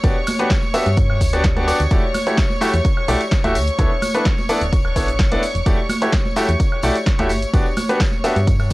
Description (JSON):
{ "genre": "piano house", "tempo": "128 BPM", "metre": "4/4", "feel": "straight", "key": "E dorian", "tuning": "A4 = 440 Hz", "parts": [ { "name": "warm studio violin section", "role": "sustained chords", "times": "0.0-8.7 s", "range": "C#5 to C#6", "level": "-25 LUFS", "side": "equal", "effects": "vintage 12-bit sampler grit, sidechain pumping, cassette tape" }, { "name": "bright grand piano", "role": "riff", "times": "0.0-8.3 s", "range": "A3 to E5", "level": "-21 LUFS", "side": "equal", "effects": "sidechain pumping, cassette tape, tape echo" }, { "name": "solid FM bass", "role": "bass", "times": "0.0-8.7 s", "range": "D1 to G2", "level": "-21 LUFS", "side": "equal", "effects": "sidechain pumping" }, { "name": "electronic kick drum", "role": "drums", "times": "0.0-8.7 s", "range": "none", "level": "-18 LUFS", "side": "equal", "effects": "cassette tape" }, { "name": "punchy analog drum machine", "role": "drums", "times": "0.0-8.7 s", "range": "hi-hat, shaker, snare drum, woodblock", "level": "-27 LUFS", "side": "equal", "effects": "cassette tape" }, { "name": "tambourine and congas", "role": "percussion", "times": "0.0-8.7 s", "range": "none", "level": "-28 LUFS", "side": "right 1 dB", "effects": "none" } ], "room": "light reverb", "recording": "home recording on cassette", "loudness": "-15 LUFS", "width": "side -20 dB against mid", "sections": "0.0-8.7 A section", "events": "none", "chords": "0.0 Gmaj7; 1.9 Em11; 3.6 Bm11/D; 5.4 Em11; 7.3 Gmaj7" }